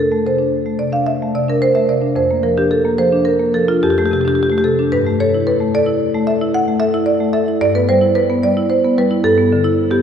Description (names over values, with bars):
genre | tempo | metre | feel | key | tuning
classical, contemporary piece for solo marimba | 110 BPM | 5/4 | rubato | unclear | A4 = 440 Hz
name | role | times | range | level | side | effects
marimba with medium mallets | solo | 0.0-10.0 s | F2 to Gb5 | -13 LUFS | equal | none
room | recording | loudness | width
wet cathedral reverb, RT60 4.1 s | heard from further back in the room | -13 LUFS | side -8 dB against mid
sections
0.0-10.0 A section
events
none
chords
0.0 F6; 2.2 Bb/F; 3.8 F69; 4.9 Gsus2; 7.6 G6; 9.2 G69